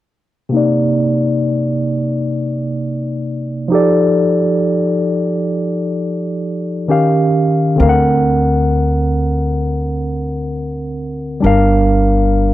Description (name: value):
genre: R&B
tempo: 66 BPM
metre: 4/4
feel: swing 59% on 16ths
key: C minor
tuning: A4 = 440 Hz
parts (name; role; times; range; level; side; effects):
- barky tine electric piano; accompaniment; 0.5-12.5 s; C3 to F#5; -14 LUFS; equal; overdrive, auto-pan, low-pass filter
- upright bass; bass; 7.8-12.5 s; G1 to D2; -17 LUFS; equal; none
room: light reverb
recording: dry, close 1970s-style studio recording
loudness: -13 LUFS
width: side -14 dB against mid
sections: 0.5-12.5 A section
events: filter sweep on tine electric piano 0.5-12.5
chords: 0.5 Cm9; 3.7 F13; 6.9 Eb9; 7.8 D7b13; 11.4 Gm7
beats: | 0.52 1.43 2.34 3.25 | 4.16 5.06 5.97 6.88 | 7.79 8.70 9.61 10.52 | 11.43 12.34